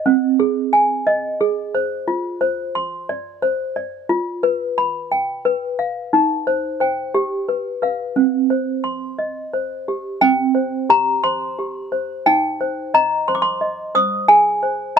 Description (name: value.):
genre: classical, lullaby for toy piano.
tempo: 59 BPM (dotted quarters).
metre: 6/8.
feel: straight.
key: C minor.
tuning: A4 = 441 Hz.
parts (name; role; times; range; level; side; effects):
toy piano; solo; 0.0-15.0 s; C4 to Eb6; -17 LUFS; equal; none.
room: little or no reverb.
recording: close, detailed microphones.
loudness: -17 LUFS.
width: side -7 dB against mid.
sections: 0.0-10.2 A section; 10.2-15.0 A section.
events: none.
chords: 0.1 Ab/C; 2.1 Dm7/F; 4.1 G7/F; 6.1 Cm/Eb; 7.1 G7; 8.2 Cm; 10.2 C5; 12.3 Cm/Eb; 14.3 Ab.